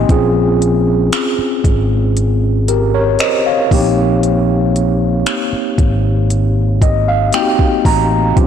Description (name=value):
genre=contemporary R&B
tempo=58 BPM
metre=4/4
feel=straight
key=unclear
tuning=A4 = 440 Hz
part: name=mellow tine electric piano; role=accompaniment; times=0.0-8.5 s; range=Bb3 to C6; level=-15 LUFS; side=equal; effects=slow stereo tremolo
part: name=fretless electric bass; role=bass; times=0.0-8.5 s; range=Ab1 to Bb1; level=-15 LUFS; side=equal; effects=none
part: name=smooth R&B drum kit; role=drums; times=0.1-8.5 s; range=finger snaps, hi-hat, kick drum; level=-16 LUFS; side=equal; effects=vintage 12-bit sampler grit, soft clipping on snare
room=light reverb, digital ambience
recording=blown-out, overdriven recording, overdrive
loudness=-12 LUFS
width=side -8 dB against mid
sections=0.0-8.5 A section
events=tine electric piano fill 6.3-8.4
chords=0.1 Bbm9; 3.7 Abmaj7